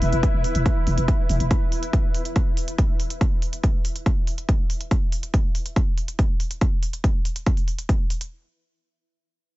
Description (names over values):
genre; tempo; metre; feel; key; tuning
driving peak-time techno; 141 BPM; 4/4; straight; unclear; A4 = 440 Hz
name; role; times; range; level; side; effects
growling 808-style bass; bass; 0.0-1.5 s; E1; -22 LUFS; equal; tube saturation, sidechain pumping, low-pass filter
electronic hi-hat; drums; 0.0-8.3 s; none; -35 LUFS; right 2 dB; sidechain pumping on hats
granular cloud pad; texture; 0.0-4.9 s; E4 to E5; -30 LUFS; left 1 dB; built-in reverb, sidechain pumping
electronic kick drum; drums; 0.2-8.0 s; none; -21 LUFS; equal; none
room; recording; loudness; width
little or no reverb; nothing above 7.7 kHz; -20 LUFS; side -18 dB against mid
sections
0.0-8.3 A section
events
fade-out on ambient pad 0.0-4.9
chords
0.0 E5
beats
0.23 0.66 1.08 | 1.51 1.93 2.36 2.78 | 3.21 3.63 4.06 4.49 | 4.91 5.34 5.76 6.19 | 6.61 7.04 7.46 7.89